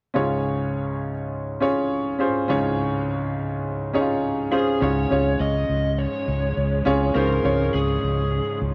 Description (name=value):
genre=pop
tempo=103 BPM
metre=4/4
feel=straight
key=Db major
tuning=A4 = 440 Hz
part: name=clear grand piano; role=accompaniment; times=0.1-8.7 s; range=Db2 to Db5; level=-25 LUFS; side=equal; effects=cassette tape, plate reverb
part: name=lead guitar through a small cranked amp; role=melody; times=4.5-8.6 s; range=Ab4 to Eb5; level=-29 LUFS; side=equal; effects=overdrive
part: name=warm studio string section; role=sustained chords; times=4.8-8.7 s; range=Db3 to Ab3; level=-36 LUFS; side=equal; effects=none
part: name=fingered electric bass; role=bass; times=4.8-8.7 s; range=Db2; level=-26 LUFS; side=equal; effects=none
room=moderate studio reverb, RT60 0.6 s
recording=home recording on cassette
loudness=-23 LUFS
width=mono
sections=0.2-4.8 A section; 4.8-8.7 B section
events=none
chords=0.2 Db